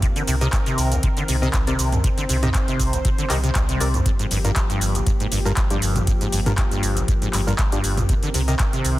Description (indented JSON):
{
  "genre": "acid house",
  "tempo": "119 BPM",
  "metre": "4/4",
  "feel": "swing 54% on 16ths",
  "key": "unclear",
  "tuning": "A4 = 440 Hz",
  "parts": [
    { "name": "warm analog pad", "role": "sustained chords", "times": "0.0-9.0 s", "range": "Eb3 to C5", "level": "-29 LUFS", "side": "left 1 dB", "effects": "chorus, sidechain pumping" },
    { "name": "acid bass, saw", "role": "riff", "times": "0.0-9.0 s", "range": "G1 to D3", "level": "-24 LUFS", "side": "equal", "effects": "tube saturation, ensemble chorus, sidechain pumping, digital delay" },
    { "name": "electro analog drum machine", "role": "drums", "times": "0.0-9.0 s", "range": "cabasa, handclaps, hi-hat, toms", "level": "-26 LUFS", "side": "equal", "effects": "none" },
    { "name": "electronic kick drum", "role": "drums", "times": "0.0-8.7 s", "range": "none", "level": "-22 LUFS", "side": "equal", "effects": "none" },
    { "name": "warm sub bass", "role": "bass", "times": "0.3-9.0 s", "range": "G1 to C2", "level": "-24 LUFS", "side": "equal", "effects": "sidechain pumping" },
    { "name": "percussive organ stab", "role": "stabs", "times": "0.4-8.5 s", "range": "G3 to Eb5", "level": "-31 LUFS", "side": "left 2 dB", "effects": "none" },
    { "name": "swell", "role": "sound effects", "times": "3.2-4.1 s", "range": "none", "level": "-36 LUFS", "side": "left 2 dB", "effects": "none" }
  ],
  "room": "light reverb, digital ambience",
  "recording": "dense, heavily limited modern master",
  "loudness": "-18 LUFS",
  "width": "side -16 dB against mid",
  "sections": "0.0-9.0 A section",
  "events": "swell 3.2-4.1",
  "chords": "0.0 Cm7; 4.1 Gm7; 8.1 Cm7",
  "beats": "| 0.02 0.53 1.03 1.54 | 2.04 2.54 3.05 3.55 | 4.06 4.56 5.07 5.57 | 6.07 6.58 7.08 7.59 | 8.09 8.60"
}